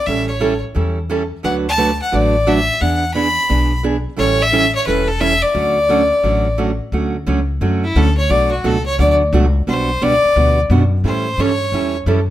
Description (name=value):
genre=country, western swing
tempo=175 BPM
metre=4/4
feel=swing 65% on 8ths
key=D major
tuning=A4 = 440 Hz
part: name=clear fiddle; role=melody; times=0.0-12.0 s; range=E4 to B5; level=-17 LUFS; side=left 1 dB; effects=none
part: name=picked acoustic archtop guitar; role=accompaniment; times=0.1-12.2 s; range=B2 to B4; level=-19 LUFS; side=right 4 dB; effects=none
part: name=upright bass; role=bass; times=0.1-12.3 s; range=E1 to A2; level=-18 LUFS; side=left 1 dB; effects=none
room=light reverb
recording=none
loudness=-14 LUFS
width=side -13 dB against mid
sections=0.0-6.9 A section; 6.9-12.3 B section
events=fiddle solo 6.9-12.3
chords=0.1 A7; 1.4 D6; 2.8 E7; 4.2 A7; 5.6 Dmaj7; 8.3 Bm7; 9.7 Gmaj7/B; 11.0 A7